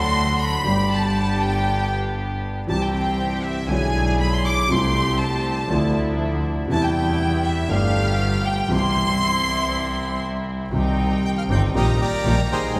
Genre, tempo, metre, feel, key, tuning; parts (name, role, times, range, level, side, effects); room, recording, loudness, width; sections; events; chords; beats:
tango; 119 BPM; 4/4; rubato; C major; A4 = 439 Hz
warm studio violin section; second line; 0.0-12.8 s; E5 to D6; -27 LUFS; equal
warm concert grand piano; accompaniment; 0.0-12.8 s; G1 to G4; -26 LUFS; equal
rich chamber string section; stabs; 0.0-12.8 s; F3 to G#4; -32 LUFS; equal
clear double bass; bass; 0.0-12.8 s; G1 to E2; -27 LUFS; equal
bandoneon; melody; 11.3-12.8 s; Eb4 to G5; -27 LUFS; equal
wet church reverb, RT60 3.0 s; recorded in a church or concert hall; -21 LUFS; mono
0.0-10.7 A section; 10.7-12.8 B section
violin section solo 0.0-10.7
0.0 D; 0.7 G; 2.7 C; 3.7 E7/B; 4.7 Am7/C; 5.7 Dmadd9; 6.7 Cmaj7/E; 7.7 Gadd9; 8.7 Cmaj7; 10.7 Cm; 11.7 Eb/Bb
0.16 | 0.66 1.17 1.67 2.18 | 2.69 3.19 3.69 4.20 | 4.70 5.20 5.71 6.21 | 6.71 7.21 7.71 8.20 | 8.70 9.21 9.71 10.22 | 10.73 11.24 11.75 12.25 | 12.76